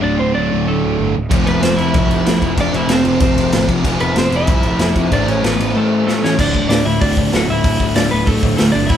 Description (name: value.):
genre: punk rock.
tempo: 190 BPM.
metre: 4/4.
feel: straight.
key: unclear.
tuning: A4 = 435 Hz.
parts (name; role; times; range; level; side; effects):
lightly driven lead guitar; melody; 0.0-9.0 s; A3 to F#5; -19 LUFS; right 1 dB; none.
distorted electric guitar; riff; 0.0-6.4 s; D2 to A3; -24 LUFS; right 7 dB; distortion.
fuzz guitar; riff; 0.0-9.0 s; D2 to A3; -20 LUFS; equal; distortion.
overdriven semi-hollow guitar; riff; 0.0-9.0 s; D2 to A3; -23 LUFS; left 7 dB; none.
fuzz picked electric bass; bass; 0.0-9.0 s; D1 to C2; -22 LUFS; right 1 dB; overdrive.
raw garage drum kit; drums; 1.3-9.0 s; crash cymbal, hi-hat, kick drum, snare drum; -17 LUFS; equal; none.
room: light reverb.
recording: band playing live in one room.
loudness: -13 LUFS.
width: side -9 dB against mid.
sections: 0.0-6.4 A section; 6.4-9.0 B section.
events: drum fill 6.1-6.4.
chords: 0.0 D5; 1.3 F5; 5.1 A; 6.4 D5.